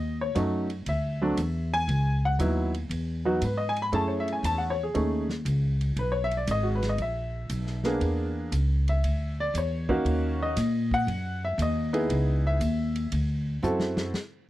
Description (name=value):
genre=jazz piano trio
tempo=118 BPM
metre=4/4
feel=swing 68% on 8ths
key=unclear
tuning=A4 = 440 Hz
part: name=clear upright piano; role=melody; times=0.0-14.1 s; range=F#3 to B5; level=-28 LUFS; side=equal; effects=none
part: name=upright bass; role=bass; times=0.0-14.1 s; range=G#1 to A#2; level=-27 LUFS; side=equal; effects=none
part: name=vintage drum kit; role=drums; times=0.4-14.3 s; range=hi-hat, kick drum, ride cymbal, snare drum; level=-39 LUFS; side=equal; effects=none
room=little or no reverb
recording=dry, close 1970s-style studio recording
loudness=-25 LUFS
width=side -15 dB against mid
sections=0.0-14.1 A section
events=upright piano solo 0.0-14.1; drum fill 13.6-14.1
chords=0.0 D#m7b5; 0.9 Dsus2; 1.9 C#m11; 3.9 F#m7; 4.9 C#sus2; 6.0 E; 8.0 E7#11; 10.1 D#m7; 12.1 C#m7; 13.1 D7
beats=0.35 0.86 1.37 | 1.88 2.39 2.90 3.41 | 3.92 4.43 4.95 5.46 | 5.97 6.48 6.99 7.50 | 8.01 8.52 9.03 9.54 | 10.05 10.56 11.07 11.58 | 12.10 12.61 13.12 13.63 | 14.14